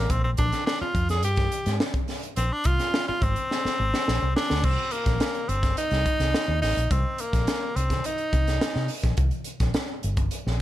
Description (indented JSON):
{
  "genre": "funk",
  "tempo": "106 BPM",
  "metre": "4/4",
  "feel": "straight",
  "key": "C minor",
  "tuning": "A4 = 440 Hz",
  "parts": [
    { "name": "edgy tenor saxophone", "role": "melody", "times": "0.0-8.9 s", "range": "Bb3 to Ab4", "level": "-27 LUFS", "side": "equal", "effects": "none" },
    { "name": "vintage muted fingered electric bass", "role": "bass", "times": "0.0-10.6 s", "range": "G1 to C3", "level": "-26 LUFS", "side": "equal", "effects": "none" },
    { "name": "crisp fusion drum kit", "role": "drums", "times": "0.1-10.5 s", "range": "crash cymbal, hi-hat, kick drum, snare drum", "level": "-26 LUFS", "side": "equal", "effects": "none" }
  ],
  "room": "little or no reverb",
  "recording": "none",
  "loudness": "-22 LUFS",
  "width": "side -14 dB against mid",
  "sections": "0.0-4.6 A section; 4.6-10.6 B section",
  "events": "drum fill 3.5-4.6",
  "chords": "0.1 Bb7sus2; 4.6 Cm7",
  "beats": "| 0.10 0.67 1.24 1.80 | 2.37 2.94 3.51 4.08 | 4.64 5.21 5.78 6.34 | 6.91 7.48 8.05 8.62 | 9.18 9.75 10.32"
}